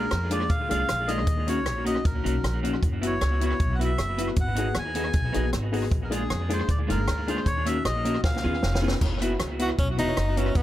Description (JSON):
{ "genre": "ska", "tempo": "155 BPM", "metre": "4/4", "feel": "straight", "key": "unclear", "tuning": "A4 = 439 Hz", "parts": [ { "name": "melodica", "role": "melody", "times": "0.0-8.8 s", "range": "G#4 to G#5", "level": "-30 LUFS", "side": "equal", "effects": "none" }, { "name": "clean electric guitar", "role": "accompaniment", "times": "0.0-10.5 s", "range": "G#3 to G#4", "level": "-32 LUFS", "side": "right 2 dB", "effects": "tape echo" }, { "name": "dark upright piano", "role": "stabs", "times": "0.0-10.5 s", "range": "A#3 to G#4", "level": "-31 LUFS", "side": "left 4 dB", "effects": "tape echo" }, { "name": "upright bass", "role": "bass", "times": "0.0-10.6 s", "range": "E1 to E#2", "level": "-28 LUFS", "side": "equal", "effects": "none" }, { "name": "compact cocktail drum kit", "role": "drums", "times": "0.1-10.6 s", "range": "crash cymbal, hi-hat, kick drum, rim click, snare drum", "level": "-28 LUFS", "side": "equal", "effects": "tape echo" }, { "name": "bright tenor saxophone", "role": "melody", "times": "9.6-10.6 s", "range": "B3 to F#4", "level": "-27 LUFS", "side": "equal", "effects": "tape echo" } ], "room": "light reverb", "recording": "none", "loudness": "-23 LUFS", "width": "side -13 dB against mid", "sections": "0.0-9.0 A section; 9.0-10.6 B section", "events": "drum fill 8.2-9.0; tenor saxophone solo 9.0-10.6", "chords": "0.0 A#7; 1.3 D#m7; 2.8 F#7sus4; 4.4 G#m7; 5.9 A#7; 7.5 D#m7; 8.2 C#7; 9.0 F#7sus4" }